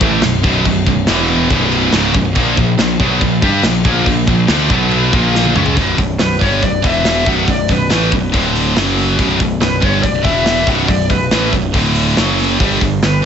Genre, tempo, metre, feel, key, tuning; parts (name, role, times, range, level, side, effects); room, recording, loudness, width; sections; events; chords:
heavy metal; 141 BPM; 4/4; straight; B harmonic minor; A4 = 443 Hz
scooped high-gain guitar; riff; 0.0-13.2 s; B1 to G4; -18 LUFS; left 10 dB; distortion
scooped high-gain guitar; riff; 0.0-13.3 s; B1 to G4; -18 LUFS; right 12 dB; distortion
scooped high-gain guitar; riff; 0.0-5.8 s; B1 to G4; -20 LUFS; right 1 dB; distortion
fuzz picked electric bass; bass; 0.0-13.2 s; B0 to G2; -18 LUFS; equal; overdrive
tight metal drum kit; drums; 0.0-13.1 s; crash cymbal, hi-hat, kick drum, snare drum, toms; -17 LUFS; equal
high-gain lead guitar; melody; 6.2-13.3 s; B4 to F#5; -18 LUFS; left 2 dB; distortion, digital delay
studio reverb; nothing above 7.9 kHz; -11 LUFS; side -8 dB against mid
0.0-5.8 A section; 5.8-13.3 B section
drum fill 5.3-5.8
0.0 B5; 1.1 E5; 1.5 B5; 2.4 A#5; 4.7 B5; 5.1 A#5; 5.8 Bm; 6.8 E5; 7.3 B5; 8.3 D5; 8.8 F#5; 9.2 Bm; 10.3 E5; 10.7 B5; 11.7 D5; 12.2 F#5; 12.6 G5